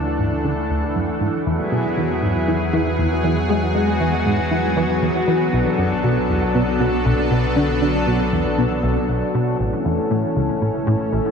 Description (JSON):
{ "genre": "ambient, sequencer-driven space music", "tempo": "118 BPM", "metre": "4/4", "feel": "straight", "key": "unclear", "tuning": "A4 = 440 Hz", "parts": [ { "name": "lush unison pad", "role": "sustained chords", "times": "0.0-11.3 s", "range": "E3 to A4", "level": "-20 LUFS", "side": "left 1 dB", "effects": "chorus" }, { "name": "plucky analog bass", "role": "riff", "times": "0.0-11.2 s", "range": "A1 to G#3", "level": "-21 LUFS", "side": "equal", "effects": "ensemble chorus, tape echo" }, { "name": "round analog bass", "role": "bass", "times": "0.0-11.3 s", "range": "A1 to E2", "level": "-28 LUFS", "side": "equal", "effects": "none" }, { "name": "wind-like tuned noise texture", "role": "texture", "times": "0.0-9.6 s", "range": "F#5", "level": "-34 LUFS", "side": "right 1 dB", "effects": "built-in reverb" } ], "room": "wet cathedral reverb, RT60 4.8 s", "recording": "in a vast, echoing space", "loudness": "-17 LUFS", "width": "side -6 dB against mid", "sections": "0.0-9.6 A section; 9.6-11.3 B section", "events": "fade-in on synth texture 0.0-9.6; filter sweep on analog synth bass 0.0-9.6", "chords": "0.0 Dsus2; 1.5 Eadd9; 5.5 Bm7; 9.6 A" }